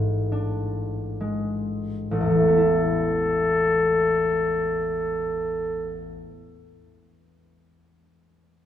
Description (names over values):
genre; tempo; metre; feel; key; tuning
classical, impressionist duo for clarinet and harp; 34 BPM; 4/4; rubato; unclear; A4 = 442 Hz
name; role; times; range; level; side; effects
concert harp; accompaniment; 0.0-6.6 s; A1 to E4; -24 LUFS; equal; none
clear clarinet; melody; 2.1-6.1 s; A4; -22 LUFS; left 2 dB; none
room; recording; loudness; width
wet concert hall reverb, RT60 2.2 s; none; -21 LUFS; side -10 dB against mid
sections
0.0-2.1 A section; 2.1-8.7 B section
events
slowing down 0.0-2.1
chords
0.0 D(b5, no3); 2.1 Asus2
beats
0.29 | 2.10 3.89 5.66